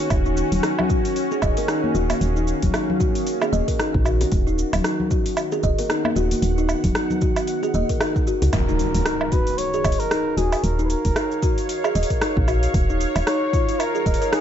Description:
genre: organic downtempo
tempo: 114 BPM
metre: 4/4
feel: swing 57% on 16ths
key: Eb minor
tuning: A4 = 440 Hz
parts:
  - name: bowed-like drone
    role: sustained chords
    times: 0.0-14.4 s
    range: Eb3 to F#5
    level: -28 LUFS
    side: equal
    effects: built-in reverb, sidechain pumping
  - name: woody FM bass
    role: bass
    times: 0.1-14.2 s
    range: Eb1 to C#2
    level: -22 LUFS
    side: equal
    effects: sidechain pumping
  - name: deep house drum kit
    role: drums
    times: 0.1-14.4 s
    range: cabasa, hi-hat, rim click, woodblock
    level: -27 LUFS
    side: right 2 dB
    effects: overdrive, small room reverb
  - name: electronic kick drum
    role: drums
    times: 0.1-14.2 s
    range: none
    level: -22 LUFS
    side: equal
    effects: small room reverb
  - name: kalimba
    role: arpeggios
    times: 0.3-14.4 s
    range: Eb4 to Eb5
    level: -25 LUFS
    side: equal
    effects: ping-pong delay
  - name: congas and bongos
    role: percussion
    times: 0.5-8.5 s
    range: none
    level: -28 LUFS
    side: left 4 dB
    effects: none
  - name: trumpet with bucket mute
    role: melody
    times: 8.5-14.4 s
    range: Ab4 to Db5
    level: -27 LUFS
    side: equal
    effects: digital delay
  - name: impact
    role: sound effects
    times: 8.5-10.6 s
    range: none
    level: -29 LUFS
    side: equal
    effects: none
room: light reverb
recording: nothing above 7.8 kHz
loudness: -19 LUFS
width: side -9 dB against mid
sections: 0.0-8.5 A section; 8.5-14.4 B section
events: impact 8.5-10.6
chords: 0.1 Ebm11; 4.3 Badd9/D#; 8.5 Ebm7; 12.7 Db/Eb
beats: | 0.11 0.64 1.16 1.69 | 2.21 2.74 3.27 3.79 | 4.32 4.85 5.37 5.90 | 6.43 6.95 7.48 8.01 | 8.53 9.06 9.58 10.11 | 10.64 11.16 11.69 12.21 | 12.74 13.27 13.79 14.32

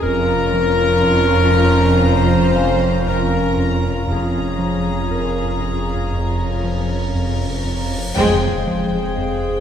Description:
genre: cinematic, suspense film score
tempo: 59 BPM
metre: 4/4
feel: straight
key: unclear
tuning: A4 = 440 Hz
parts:
  - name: warm symphonic violin section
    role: melody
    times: 0.0-9.6 s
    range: G5 to Bb5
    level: -26 LUFS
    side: left 3 dB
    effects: none
  - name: mellow clarinet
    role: second line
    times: 0.0-9.6 s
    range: Ab4 to C5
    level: -22 LUFS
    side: left 1 dB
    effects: none
  - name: warm symphonic violin section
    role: second line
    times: 0.0-9.6 s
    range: Ab4 to C5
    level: -27 LUFS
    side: left 4 dB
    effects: none
  - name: dark symphonic viola section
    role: accompaniment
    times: 0.0-9.6 s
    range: Db4 to C5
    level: -24 LUFS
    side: equal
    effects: none
  - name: glass harmonica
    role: sustained chords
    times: 0.0-9.6 s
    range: Db4 to Bb5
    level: -29 LUFS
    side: left 3 dB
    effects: none
  - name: round analog bass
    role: riff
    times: 0.0-9.5 s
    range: F2 to F3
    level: -24 LUFS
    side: right 1 dB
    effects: none
  - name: rich symphonic cello section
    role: bass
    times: 0.0-9.6 s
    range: F2 to Ab3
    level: -23 LUFS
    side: right 3 dB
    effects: none
  - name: warm symphonic double bass section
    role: bass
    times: 0.0-9.6 s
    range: F1 to F2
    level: -23 LUFS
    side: right 2 dB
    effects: none
  - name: pure sine sub bass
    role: drone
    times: 0.0-9.6 s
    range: F1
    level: -28 LUFS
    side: left 1 dB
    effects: none
  - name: felt-muted upright piano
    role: texture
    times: 0.0-8.2 s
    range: Bb3 to F5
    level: -31 LUFS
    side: left 2 dB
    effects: none
  - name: cymbal swell and impact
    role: sound effects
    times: 6.2-9.6 s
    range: none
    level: -30 LUFS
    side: left 1 dB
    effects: none
  - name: warm French horn section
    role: sustained chords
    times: 8.2-9.6 s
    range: Ab4 to C5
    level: -26 LUFS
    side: left 3 dB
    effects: none
room: wet scoring stage reverb, RT60 2.1 s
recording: heard from further back in the room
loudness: -15 LUFS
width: side -8 dB against mid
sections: 0.0-8.2 A section; 8.2-9.6 B section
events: cymbal swell 6.2-8.2; band accent 8.2-9.2; impact 8.2-9.6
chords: 0.0 Bbm7/F; 8.2 Fmadd9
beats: | 0.04 1.05 2.07 3.09 | 4.10 5.12 6.14 7.15 | 8.17 9.19

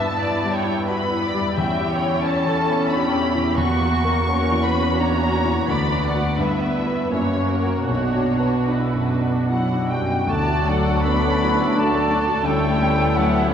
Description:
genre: classical, romantic movement for piano and orchestra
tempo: 74-91 BPM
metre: 3/4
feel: rubato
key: B minor, D major from 10.3 s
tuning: A4 = 442 Hz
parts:
  - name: clear concert grand piano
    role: melody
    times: 0.0-13.5 s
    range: B1 to C#5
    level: -23 LUFS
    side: left 2 dB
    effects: none
  - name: muted studio violin section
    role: melody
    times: 0.0-13.5 s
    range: B4 to C#6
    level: -27 LUFS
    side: left 1 dB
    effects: none
  - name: muted studio violin section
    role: second line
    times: 0.0-13.5 s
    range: F#4 to E5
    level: -28 LUFS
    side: left 1 dB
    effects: none
  - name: muted symphonic viola section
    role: accompaniment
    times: 0.0-13.5 s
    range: F#3 to F#4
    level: -26 LUFS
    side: right 2 dB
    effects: none
  - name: muted studio cello section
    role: bass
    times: 0.0-13.5 s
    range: D2 to B2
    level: -26 LUFS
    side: right 2 dB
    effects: none
  - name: silver concert flute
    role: second line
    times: 9.5-13.5 s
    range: F#5 to B5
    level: -26 LUFS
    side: right 1 dB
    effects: none
  - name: mellow French horn section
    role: sustained chords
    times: 9.5-13.5 s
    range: F#3 to B3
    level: -26 LUFS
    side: left 2 dB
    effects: none
  - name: warm clarinet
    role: second line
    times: 10.3-13.5 s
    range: C#4 to D4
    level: -31 LUFS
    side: left 3 dB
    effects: none
  - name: warm cor anglais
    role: second line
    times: 10.3-13.5 s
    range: F#4 to A4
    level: -28 LUFS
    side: right 1 dB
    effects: none
  - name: muted studio double bass section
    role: bass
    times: 10.3-13.5 s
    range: D2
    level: -27 LUFS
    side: right 2 dB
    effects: none
room: wet church reverb, RT60 2.8 s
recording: recorded in a church or concert hall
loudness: -18 LUFS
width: side -8 dB against mid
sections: 0.0-10.3 A section; 10.3-13.5 B section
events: none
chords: 0.0 Em/G; 1.6 C#dim/E; 3.6 F#7/E; 5.7 Bm/D; 6.4 Em/G; 7.1 F#; 7.9 Bm; 10.3 D; 12.5 A7/D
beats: 0.20 0.88 | 1.57 2.24 2.92 | 3.60 4.29 4.99 | 5.69 6.38 7.11 | 7.89 8.69 9.49 | 10.29 11.07 11.77 | 12.46 13.16

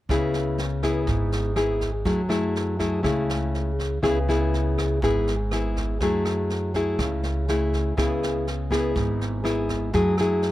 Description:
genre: bossa nova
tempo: 122 BPM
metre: 4/4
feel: straight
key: C# minor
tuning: A4 = 438 Hz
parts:
  - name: nylon-string guitar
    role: accompaniment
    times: 0.1-10.5 s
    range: G#2 to G#4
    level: -23 LUFS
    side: left 1 dB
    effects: none
  - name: upright bass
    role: bass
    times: 0.1-10.5 s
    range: G#1 to F#2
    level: -28 LUFS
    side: right 1 dB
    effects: none
  - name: jazz brush drum kit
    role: drums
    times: 0.1-10.5 s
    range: kick drum, rim click, snare drum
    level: -32 LUFS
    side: right 1 dB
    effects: none
room: light reverb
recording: none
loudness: -22 LUFS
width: side -15 dB against mid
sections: 0.1-10.5 A section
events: none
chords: 0.1 C#m7; 2.1 F#m9; 4.0 C#m7; 6.0 F#m9; 8.0 C#m7; 9.9 F#m9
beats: | 0.10 0.59 1.08 1.57 | 2.07 2.56 3.05 3.54 | 4.04 4.53 5.02 5.51 | 6.00 6.50 6.99 7.48 | 7.97 8.46 8.96 9.45 | 9.94 10.43

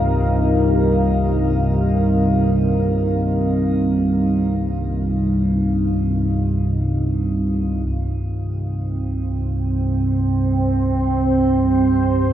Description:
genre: dark ambient drone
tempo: free time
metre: none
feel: none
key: unclear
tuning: A4 = 440 Hz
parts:
  - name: deep dark ambient pad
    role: sustained chords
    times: 0.0-12.3 s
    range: C3 to F5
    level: -21 LUFS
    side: right 1 dB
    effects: chorus, built-in reverb, shimmer reverb
  - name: analog drone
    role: drone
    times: 0.0-12.3 s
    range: C2 to G2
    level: -19 LUFS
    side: equal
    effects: chorus
room: wet lush hall reverb, RT60 2.7 s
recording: dreamy mix soaked in reverb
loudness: -17 LUFS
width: side -11 dB against mid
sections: 0.0-7.9 A section; 7.9-12.3 B section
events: filter sweep on synth drone 0.0-7.9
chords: 0.0 Eb/C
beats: free time

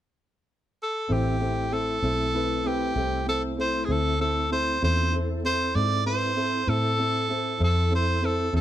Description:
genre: slow blues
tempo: 65 BPM (dotted quarters)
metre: 12/8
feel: straight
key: A minor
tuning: A4 = 439 Hz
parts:
  - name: bright tenor saxophone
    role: melody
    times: 0.8-8.6 s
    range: G4 to D5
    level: -26 LUFS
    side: equal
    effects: none
  - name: warm grand piano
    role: accompaniment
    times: 1.1-8.6 s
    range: C4 to C5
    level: -30 LUFS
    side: equal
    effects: none
  - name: mellow tonewheel organ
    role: sustained chords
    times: 1.1-8.6 s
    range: A3 to A4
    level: -34 LUFS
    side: left 1 dB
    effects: slow rotary speaker, chorus vibrato
  - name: vintage muted fingered electric bass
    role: bass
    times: 1.1-8.6 s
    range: A1 to A2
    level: -27 LUFS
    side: equal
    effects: none
room: light reverb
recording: band playing live in one room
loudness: -23 LUFS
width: side -12 dB against mid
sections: 0.0-1.1 A section; 1.1-8.6 B section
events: none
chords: 0.0 N.C.; 1.1 Am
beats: 0.17 | 1.10 2.03 2.96 3.89 | 4.82 5.75 6.67 7.61 | 8.54

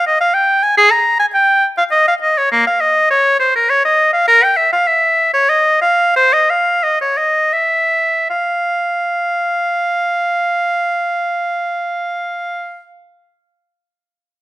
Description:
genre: classical, baroque-style fantasia for unaccompanied oboe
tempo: 77-106 BPM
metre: 3/4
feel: rubato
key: unclear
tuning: A4 = 440 Hz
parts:
  - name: bright oboe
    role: solo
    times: 0.0-12.9 s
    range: Bb3 to Bb5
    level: -12 LUFS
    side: equal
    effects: none
room: light reverb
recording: close, detailed microphones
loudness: -12 LUFS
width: side -17 dB against mid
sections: 0.0-8.3 A section; 8.3-12.8 B section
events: slowing down 3.4-8.3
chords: none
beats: 0.19 | 0.76 1.34 1.92 | 2.51 3.10 3.69 | 4.27 4.88 5.50 | 6.15 6.83 7.53 | 8.29 9.05 9.80 | 10.55 11.30 12.05

